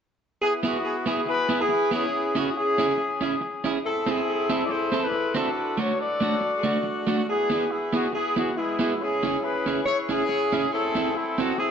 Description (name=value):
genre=ska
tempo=140 BPM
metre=4/4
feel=swing 55% on 8ths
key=E mixolydian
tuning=A4 = 440 Hz
part: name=warm horn section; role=melody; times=0.4-11.7 s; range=G#3 to D5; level=-24 LUFS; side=left 1 dB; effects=tape echo
part: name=electric guitar at the edge of break-up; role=accompaniment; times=0.6-11.6 s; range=A3 to A4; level=-27 LUFS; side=right 3 dB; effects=none
room=wet studio reverb, RT60 0.8 s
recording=dark, warm production, nothing above 7.8 kHz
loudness=-22 LUFS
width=side -7 dB against mid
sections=0.4-7.3 A section; 7.3-11.7 B section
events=none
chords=0.4 E; 2.1 C#m; 3.8 Am; 5.5 D; 7.3 E; 9.0 C#m; 10.7 Am